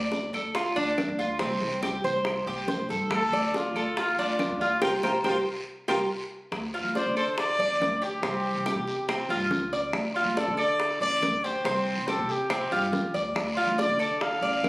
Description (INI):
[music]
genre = latin, Cuban son and guajira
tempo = 141 BPM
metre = 4/4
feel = straight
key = D minor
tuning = A4 = 442 Hz
[part]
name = Cuban tres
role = arpeggios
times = 0.0-14.7 s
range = C4 to D5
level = -28 LUFS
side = equal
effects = none
[part]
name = upright bass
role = bass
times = 0.0-14.7 s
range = A1 to D3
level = -34 LUFS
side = equal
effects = none
[part]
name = bongos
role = percussion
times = 0.1-14.7 s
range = none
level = -33 LUFS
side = left 1 dB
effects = none
[part]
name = guiro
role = percussion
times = 0.1-14.7 s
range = none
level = -40 LUFS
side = left 1 dB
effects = none
[part]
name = claves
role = percussion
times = 0.3-14.7 s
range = none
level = -37 LUFS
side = equal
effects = none
[part]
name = breathy trumpet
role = melody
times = 3.1-14.7 s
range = F4 to F5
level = -28 LUFS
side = equal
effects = none
[sound]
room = moderate large studio reverb, RT60 1.2 s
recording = recorded on a phone in the room, studio reverb, compression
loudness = -24 LUFS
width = side -21 dB against mid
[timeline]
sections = 0.0-6.5 A section; 6.5-14.7 B section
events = band accent 4.8-6.5; drum fill 6.1-6.5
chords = 0.0 Dm; 1.4 C5; 3.1 Dm; 4.8 C7sus4; 6.5 Dm; 8.2 Csus4; 9.9 Dm; 11.6 Csus4; 13.4 Dm